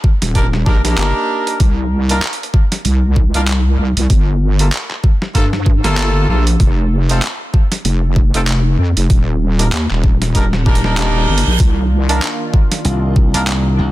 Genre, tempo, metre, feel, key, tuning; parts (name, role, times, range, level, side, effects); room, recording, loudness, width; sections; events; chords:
glitch hop; 96 BPM; 4/4; swing 58% on 16ths; C dorian; A4 = 440 Hz
electronic kick drum; drums; 0.0-13.3 s; -12 LUFS; equal; overdrive
wobble bass; bass; 0.2-12.2 s; Eb1 to G2; -14 LUFS; equal; chorus, tube saturation
boom bap sampler-style drum kit; drums; 0.2-13.6 s; handclaps, hi-hat, snare drum; -21 LUFS; right 1 dB; overdrive
clear horn section; stabs; 0.3-13.4 s; A3 to Bb4; -21 LUFS; equal; sidechain pumping, dub echo
reverse cymbal; sound effects; 10.6-11.6 s; -24 LUFS; right 4 dB
warm analog pad; sustained chords; 11.6-13.9 s; Eb3 to F4; -24 LUFS; equal; chorus, tremolo, vintage 12-bit sampler grit, sidechain pumping
slap bass; bass; 12.8-13.9 s; C2; -14 LUFS; equal; tube saturation
digital ambience; dense, heavily limited modern master; -12 LUFS; side -16 dB against mid
0.0-13.9 A section
reverse cymbal 10.6-11.6
0.0 Ebmaj7; 1.6 C7(no3); 4.1 Gm9; 6.6 F; 9.1 Ebmaj7; 11.6 Cm11